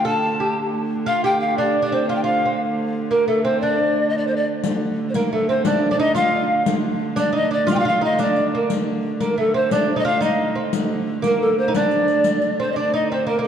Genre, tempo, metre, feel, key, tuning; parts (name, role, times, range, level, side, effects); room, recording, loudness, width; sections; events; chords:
medieval dance; 118 BPM (dotted quarters); 6/8; straight; D phrygian; A4 = 443 Hz
polished pan flute; melody; 0.0-13.5 s; A4 to A5; -20 LUFS; left 1 dB
lute; second line; 0.0-13.5 s; A3 to A4; -24 LUFS; right 3 dB
rich hurdy-gurdy; drone; 0.0-13.5 s; D3 to A3; -25 LUFS; right 3 dB
riq; percussion; 4.6-12.5 s; -26 LUFS; left 4 dB
wet church reverb, RT60 2.5 s; dark, warm production; -17 LUFS; side -8 dB against mid
0.0-4.6 A section; 4.6-12.8 A section